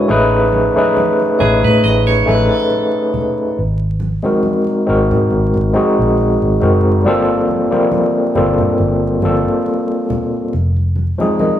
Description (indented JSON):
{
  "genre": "R&B, neo-soul",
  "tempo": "69 BPM",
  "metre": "4/4",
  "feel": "swing 54% on 16ths",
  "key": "unclear",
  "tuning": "A4 = 441 Hz",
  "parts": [
    { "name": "clean electric guitar", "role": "second line", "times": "0.0-3.5 s", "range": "G#4 to D#5", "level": "-20 LUFS", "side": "right 3 dB", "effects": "phaser" },
    { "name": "overdriven tine electric piano", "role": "accompaniment", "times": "0.0-11.6 s", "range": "F3 to G#5", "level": "-13 LUFS", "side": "equal", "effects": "fast tremolo" },
    { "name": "vintage muted fingered electric bass", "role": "bass", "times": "0.1-11.1 s", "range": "F1 to A2", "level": "-17 LUFS", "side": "equal", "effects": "none" },
    { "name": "congas", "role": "percussion", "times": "0.1-11.6 s", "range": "none", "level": "-26 LUFS", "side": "right 2 dB", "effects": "none" }
  ],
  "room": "moderate large studio reverb, RT60 1.3 s",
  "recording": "band playing live in one room, vinyl crackle",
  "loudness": "-12 LUFS",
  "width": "side -11 dB against mid",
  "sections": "0.0-11.6 A section",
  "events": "none",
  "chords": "0.1 Amaj9#11; 3.6 Ab9; 7.0 Gm11; 10.5 Fm7",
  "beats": "| 0.09 0.96 1.83 2.70 | 3.57 4.44 5.31 6.17 | 7.04 7.92 8.78 9.65 | 10.52 11.39"
}